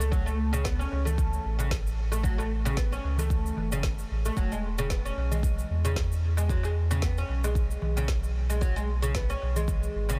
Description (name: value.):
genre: organic downtempo.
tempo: 113 BPM.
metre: 4/4.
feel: swing 56% on 16ths.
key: unclear.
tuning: A4 = 440 Hz.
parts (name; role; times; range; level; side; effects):
oud; arpeggios; 0.0-10.2 s; C#3 to C#4; -35 LUFS; equal; low-pass filter, tape echo.
warm sub bass; bass; 0.0-10.2 s; E1 to E2; -30 LUFS; equal; tube saturation.
electronic shaker and snare drum; drums; 0.0-10.2 s; none; -43 LUFS; equal; small room ambience.
darbuka; percussion; 0.0-10.2 s; none; -42 LUFS; equal; none.
electronic kick drum; drums; 0.1-9.8 s; none; -32 LUFS; equal; small room ambience.
room: small room ambience.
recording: dense, heavily limited modern master.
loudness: -28 LUFS.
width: mono.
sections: 0.0-10.2 A section.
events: none.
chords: 0.0 F#m; 4.4 E.